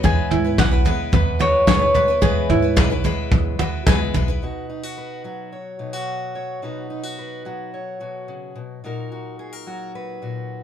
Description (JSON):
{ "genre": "indie folk with a building arrangement", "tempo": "109 BPM", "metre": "4/4", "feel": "straight", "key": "B major", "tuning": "A4 = 442 Hz", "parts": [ { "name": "concert harp", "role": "melody", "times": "0.0-4.0 s", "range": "B4 to G#5", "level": "-20 LUFS", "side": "equal", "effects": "none" }, { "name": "picked steel-string acoustic guitar", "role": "accompaniment", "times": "0.0-4.4 s", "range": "E3 to B4", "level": "-25 LUFS", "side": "left 7 dB", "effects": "none" }, { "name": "open-back banjo", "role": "arpeggios", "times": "0.0-4.4 s", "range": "E4 to G#4", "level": "-25 LUFS", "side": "right 6 dB", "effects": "none" }, { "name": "upright bass", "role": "bass", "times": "0.0-4.4 s", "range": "B1 to G#2", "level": "-24 LUFS", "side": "equal", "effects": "none" }, { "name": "soft brush drum kit", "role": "drums", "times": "0.0-4.3 s", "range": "kick drum, snare drum, toms", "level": "-19 LUFS", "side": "right 1 dB", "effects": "none" }, { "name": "fingerpicked steel-string acoustic guitar", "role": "accompaniment", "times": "4.4-10.6 s", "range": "A#2 to C#5", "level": "-29 LUFS", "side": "left 1 dB", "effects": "none" } ], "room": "light reverb", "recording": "band playing live in one room", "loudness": "-17 LUFS", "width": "side -9 dB against mid", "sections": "0.0-4.4 A section; 4.4-10.6 B section", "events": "none", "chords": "0.0 E; 4.4 B; 8.8 D#m/A#", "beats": "| 0.04 0.59 1.13 1.68 | 2.22 2.77 3.32 3.87 | 4.42 4.97 5.52 6.07 | 6.63 7.18 7.73 8.29 | 8.84 9.39 9.94 10.49" }